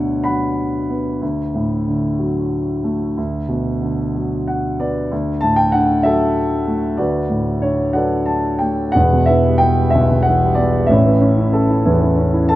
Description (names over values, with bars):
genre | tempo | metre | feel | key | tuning
classical, lyrical solo piano | 62 BPM (dotted quarters) | 6/8 | rubato | D major | A4 = 440 Hz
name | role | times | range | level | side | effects
dark concert grand piano | solo | 0.0-12.6 s | E1 to B5 | -15 LUFS | equal | none
room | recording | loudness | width
light reverb | none | -15 LUFS | side -15 dB against mid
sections
0.0-9.0 A section; 9.0-12.6 B section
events
grand piano fill 4.2-5.1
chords
0.0 Bmadd9/D; 1.2 D; 3.2 Bm/D; 5.1 D; 7.0 D6; 9.0 Em; 10.9 A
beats
0.23 | 1.22 2.20 | 3.18 4.16 | 5.12 6.05 | 6.99 7.95 | 8.95 9.94 | 10.90 11.86